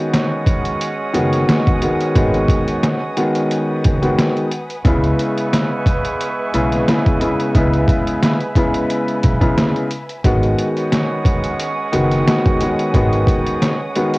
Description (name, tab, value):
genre	hip hop, boom-bap hip-hop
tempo	89 BPM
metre	4/4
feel	swing 55% on 16ths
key	G# minor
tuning	A4 = 440 Hz
part	warm upright piano	accompaniment	0.0-14.2 s	C#3 to F#4	-18 LUFS	left 1 dB	cassette tape, high-pass filter, low-pass filter
part	warm studio string section	sustained chords	0.0-14.2 s	B4 to D#6	-29 LUFS	equal	high-pass filter, low-pass filter
part	mellow horn section	stabs	0.0-14.2 s	G#3 to C#5	-25 LUFS	right 3 dB	high-pass filter, low-pass filter, tape echo
part	trip hop sampler-style drum kit	drums	0.1-14.2 s	hi-hat, kick drum, snare drum	-17 LUFS	equal	overdrive, cassette tape
part	upright bass	bass	1.2-13.2 s	F#1 to C#2	-20 LUFS	equal	none
room	studio ambience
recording	home recording on cassette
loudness	-14 LUFS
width	side -22 dB against mid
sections	0.0-14.2 A section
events	none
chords	0.0 G#m7; 4.9 C#m7; 10.2 G#m7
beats	0.14 0.81 1.48 | 2.16 2.83 3.51 4.18 | 4.85 5.53 6.20 6.88 | 7.55 8.22 8.90 9.57 | 10.25 10.92 11.60 12.27 | 12.94 13.62